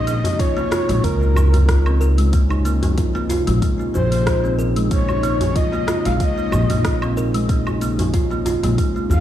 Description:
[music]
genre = organic downtempo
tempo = 93 BPM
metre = 4/4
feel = swing 54% on 16ths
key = Bb minor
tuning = A4 = 440 Hz
[part]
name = breathy flute-like synth lead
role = melody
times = 0.0-9.2 s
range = Bb4 to F5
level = -26 LUFS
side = left 2 dB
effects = analog chorus, ping-pong delay
[part]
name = warm analog pad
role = sustained chords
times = 0.0-9.2 s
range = C3 to Eb4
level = -26 LUFS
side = right 1 dB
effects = wide subtle chorus, sidechain pumping
[part]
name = kalimba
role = arpeggios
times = 0.0-9.2 s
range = F3 to Bb4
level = -23 LUFS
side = right 1 dB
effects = digital delay
[part]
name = upright bass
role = bass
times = 0.0-9.2 s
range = Bb1 to Eb2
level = -19 LUFS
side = equal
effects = sidechain pumping
[part]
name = deep house drum kit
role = drums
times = 0.1-9.2 s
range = hi-hat, rim click, shaker, woodblock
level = -30 LUFS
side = right 1 dB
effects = none
[part]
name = djembe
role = percussion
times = 0.2-9.2 s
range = none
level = -27 LUFS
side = left 2 dB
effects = none
[part]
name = electronic kick drum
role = drums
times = 0.4-8.9 s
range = none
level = -21 LUFS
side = equal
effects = none
[sound]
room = light reverb, small room reverb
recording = played on a big sound system in a bare room, large studio reverb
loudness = -16 LUFS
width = side -11 dB against mid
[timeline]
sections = 0.0-9.2 A section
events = none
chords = 0.0 Bbm11

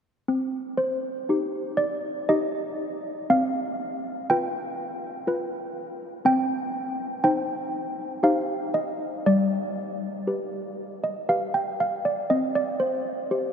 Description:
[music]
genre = classical, tune for handbells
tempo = 60 BPM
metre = 3/4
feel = straight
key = C minor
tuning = A4 = 440 Hz
[part]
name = malleted handbells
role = solo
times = 0.3-13.5 s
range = G3 to G5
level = -24 LUFS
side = equal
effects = none
[sound]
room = wet cathedral reverb, RT60 6.6 s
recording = none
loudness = -24 LUFS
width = side -7 dB against mid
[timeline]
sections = 0.3-13.5 A section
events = none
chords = 0.3 Cm; 3.3 G7/C; 6.3 Cm; 8.2 Cm/Eb; 9.3 G; 12.3 Cm

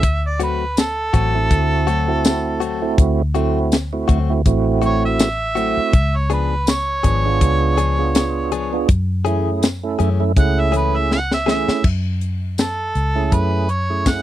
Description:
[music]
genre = straight-eighth soul blues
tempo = 81 BPM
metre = 4/4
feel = swing 54% on 16ths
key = F# minor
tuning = A4 = 440 Hz
[part]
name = clear harmonica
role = melody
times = 0.0-14.2 s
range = A4 to F#5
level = -22 LUFS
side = right 2 dB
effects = overdrive
[part]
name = tonewheel organ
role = accompaniment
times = 0.0-14.2 s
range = A3 to A4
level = -21 LUFS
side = right 5 dB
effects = overdrive, chorus vibrato, slow rotary speaker
[part]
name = vintage muted fingered electric bass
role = bass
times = 0.0-14.2 s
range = G#1 to F#2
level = -20 LUFS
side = equal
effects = none
[part]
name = tight funk drum kit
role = drums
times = 0.0-14.2 s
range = crash cymbal, hi-hat, kick drum, snare drum, tambourine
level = -17 LUFS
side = left 1 dB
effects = none
[part]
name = direct-recorded clean electric guitar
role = stabs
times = 0.4-11.7 s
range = E3 to G#4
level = -23 LUFS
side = left 10 dB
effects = none
[sound]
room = little or no reverb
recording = dry, close 1970s-style studio recording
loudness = -16 LUFS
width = side -13 dB against mid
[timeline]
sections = 0.0-11.8 A section; 11.8-14.2 B section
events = harmonica solo 0.0-11.8; drum fill 11.1-11.8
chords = 0.0 D7; 5.9 C#7b9; 8.9 F#m9

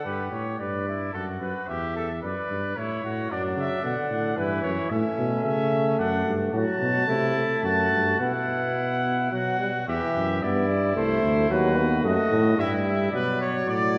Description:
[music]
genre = classical, imitative canzona for brass ensemble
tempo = 110 BPM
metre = 3/4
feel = straight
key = G major, E minor from 6.5 s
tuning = A4 = 442 Hz
[part]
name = clear trumpet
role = melody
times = 0.0-14.0 s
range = A4 to A5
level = -31 LUFS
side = equal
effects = none
[part]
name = bright trumpet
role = second line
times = 0.0-14.0 s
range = C#4 to D5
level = -34 LUFS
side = equal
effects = none
[part]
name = clear euphonium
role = accompaniment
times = 0.0, 3.3-14.0 s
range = D3 to B3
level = -29 LUFS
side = equal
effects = none
[part]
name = dark bass trombone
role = bass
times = 0.1-14.0 s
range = C2 to C#3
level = -30 LUFS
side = equal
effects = none
[sound]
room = wet concert hall reverb, RT60 2.0 s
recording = none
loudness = -25 LUFS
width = mono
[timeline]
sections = 0.1-9.9 A section; 9.9-13.1 B section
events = none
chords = 0.1 G; 1.1 F#madd11; 1.7 Em; 2.8 A; 3.3 D/F#; 4.4 Em/G; 4.9 A; 6.0 D/F#; 6.5 F#dim/A; 8.2 Bsus4; 9.3 B5; 9.9 Em; 11.0 Am/C; 11.5 B/D#; 12.6 Em/G; 13.1 Bm

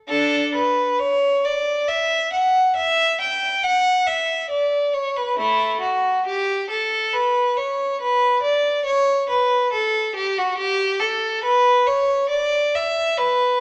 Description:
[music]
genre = classical, baroque-style suite movement for unaccompanied violin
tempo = 69 BPM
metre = 3/4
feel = rubato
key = D major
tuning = A4 = 440 Hz
[part]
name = rich violin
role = solo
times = 0.1-13.6 s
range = A3 to G5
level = -20 LUFS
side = equal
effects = none
[sound]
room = wet stone room reverb, RT60 1.4 s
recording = none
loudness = -20 LUFS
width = mono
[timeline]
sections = 0.1-13.6 A section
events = none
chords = none

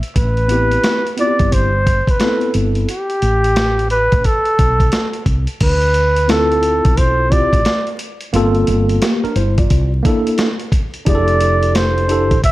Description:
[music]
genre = hip hop, jazz-hop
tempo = 88 BPM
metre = 4/4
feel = swing 64% on 16ths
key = A minor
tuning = A4 = 440 Hz
[part]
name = boom bap sampler-style drum kit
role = drums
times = 0.0-12.5 s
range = crash cymbal, hi-hat, kick drum, snare drum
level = -18 LUFS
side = equal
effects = none
[part]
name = breathy flugelhorn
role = melody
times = 0.2-12.5 s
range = G4 to E5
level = -17 LUFS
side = right 1 dB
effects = none
[part]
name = woody fretless electric bass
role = bass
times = 0.2-12.5 s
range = F1 to D2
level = -17 LUFS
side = equal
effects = none
[part]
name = tine electric piano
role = accompaniment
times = 0.5-12.4 s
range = Bb3 to D5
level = -18 LUFS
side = equal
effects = overdrive, fast stereo tremolo
[sound]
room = light reverb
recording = dark, warm production, vinyl crackle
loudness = -13 LUFS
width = side -17 dB against mid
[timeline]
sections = 0.0-5.6 A section; 5.6-12.5 B section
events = none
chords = 0.2 Am9; 5.6 Dm9; 8.3 Gm11; 9.7 C13; 11.1 Fmaj13

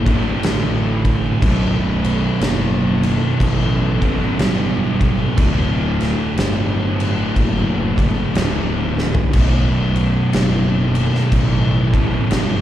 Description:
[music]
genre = stoner and doom metal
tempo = 61 BPM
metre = 4/4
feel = swing 62% on 8ths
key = B minor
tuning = A4 = 440 Hz
[part]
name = fuzz guitar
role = riff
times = 0.0-12.6 s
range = B1 to D3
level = -18 LUFS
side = equal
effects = distortion
[part]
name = fuzz picked electric bass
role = bass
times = 0.0-12.6 s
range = B0 to A1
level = -21 LUFS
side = equal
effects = overdrive
[part]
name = oversized low-tuned drum kit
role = drums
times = 0.1-12.6 s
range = crash cymbal, kick drum, snare drum, toms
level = -20 LUFS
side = equal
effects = none
[sound]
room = little or no reverb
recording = live gig heard through the venue's PA, recital hall reverb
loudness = -15 LUFS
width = side -12 dB against mid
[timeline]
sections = 0.0-12.6 A section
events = drum fill 8.8-9.3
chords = 0.0 D; 1.4 B5; 5.4 D; 9.3 B5

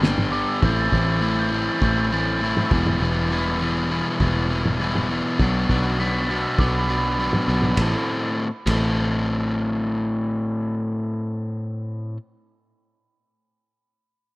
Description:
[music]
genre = indie rock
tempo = 101 BPM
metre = 4/4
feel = straight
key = A dorian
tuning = A4 = 443 Hz
[part]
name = crunchy overdriven guitar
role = riff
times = 0.0-12.2 s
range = E2 to A4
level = -22 LUFS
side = left 1 dB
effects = none
[part]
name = picked electric bass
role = bass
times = 0.0-11.6 s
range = E1 to B1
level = -24 LUFS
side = equal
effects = none
[part]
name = cloth-damped thuddy drum kit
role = drums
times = 0.0-8.8 s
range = kick drum, ride cymbal, snare drum, toms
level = -24 LUFS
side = equal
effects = none
[part]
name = glockenspiel with rubber mallets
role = melody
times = 0.3-7.7 s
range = B5 to B6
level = -29 LUFS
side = right 2 dB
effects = tape echo
[sound]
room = studio reverb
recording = rough home demo mix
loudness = -20 LUFS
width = side -22 dB against mid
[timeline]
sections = 0.0-7.8 A section; 7.8-10.2 B section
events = none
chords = 0.0 G; 0.6 Am; 2.7 Em; 5.4 Bm; 7.8 Am

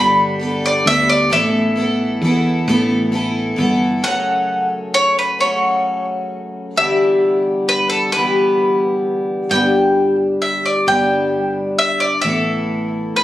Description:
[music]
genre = acoustic folk duo or small band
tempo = 132 BPM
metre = 3/4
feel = straight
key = unclear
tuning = A4 = 440 Hz
[part]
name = bowl-back mandolin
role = melody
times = 0.0-13.2 s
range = A4 to B5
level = -16 LUFS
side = equal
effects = plate reverb
[part]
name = picked twelve-string acoustic guitar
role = accompaniment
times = 0.0-13.2 s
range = F#2 to A4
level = -17 LUFS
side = left 1 dB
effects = none
[part]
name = woody fretless electric bass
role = bass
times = 0.0-4.0, 9.5-13.1 s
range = G1 to E2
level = -22 LUFS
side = equal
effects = none
[sound]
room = moderate small room reverb, RT60 0.6 s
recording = recorded on a phone in the room, studio ambience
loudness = -14 LUFS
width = side -14 dB against mid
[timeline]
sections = 0.0-4.0 A section; 4.0-13.2 B section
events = none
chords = 0.0 Gadd9; 1.3 Asus2; 4.0 F#m; 6.8 Em7/G; 9.5 G; 12.2 Asus2

